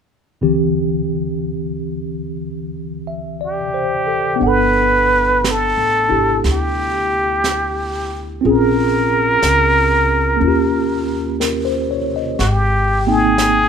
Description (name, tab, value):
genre	jazz ballad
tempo	60 BPM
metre	4/4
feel	swing 66% on 8ths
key	unclear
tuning	A4 = 440 Hz
part	tine electric piano	accompaniment	0.4-13.7 s	D2 to G5	-19 LUFS	equal	medium stereo tremolo
part	trumpet with plunger mute	melody	3.5-13.7 s	F#4 to B4	-16 LUFS	right 1 dB	none
part	upright bass	bass	4.4-13.7 s	G1 to Eb2	-22 LUFS	equal	none
part	vintage brush drum kit	drums	4.4-13.7 s	brushed snare drum, hi-hat, snare drum	-26 LUFS	right 4 dB	none
room	light reverb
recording	minimal, uncompressed stereo recording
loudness	-14 LUFS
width	side -7 dB against mid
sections	0.4-4.4 A section; 4.4-13.7 B section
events	none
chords	0.4 D7sus4; 4.4 Gmaj9; 8.4 Bbm7; 10.4 Eb7; 12.4 Abmaj9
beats	| 0.43 1.42 2.41 3.40 | 4.42 5.43 6.43 7.43 | 8.43 9.43 10.41 11.40 | 12.39 13.38